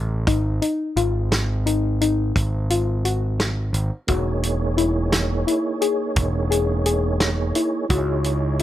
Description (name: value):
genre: progressive instrumental, band music in an uneven meter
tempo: 173 BPM (eighths)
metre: 11/8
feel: straight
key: unclear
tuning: A4 = 439 Hz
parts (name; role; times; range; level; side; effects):
- overdriven picked electric bass; bass; 0.0-8.6 s; E1 to Db2; -22 LUFS; right 1 dB; none
- soft round pluck; arpeggios; 0.3-8.6 s; Eb4 to G#4; -24 LUFS; left 5 dB; chorus, plate reverb
- warm soul drum kit; drums; 0.3-8.6 s; hi-hat, kick drum, snare drum; -24 LUFS; right 1 dB; none
- mellow tonewheel organ; accompaniment; 4.1-8.6 s; Bb3 to Db5; -26 LUFS; right 3 dB; chorus vibrato, fast rotary speaker, plate reverb
room: light reverb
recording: none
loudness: -19 LUFS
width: side -13 dB against mid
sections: 0.0-4.1 A section; 4.1-8.6 B section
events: none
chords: 0.3 Ab5; 4.1 E; 7.9 Dbmadd9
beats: | 0.27 0.62 0.96 1.31 1.66 2.00 2.35 2.70 3.05 3.39 3.74 | 4.09 4.43 4.78 5.13 5.47 5.82 6.17 6.51 6.86 7.21 7.56 | 7.90 8.25 8.60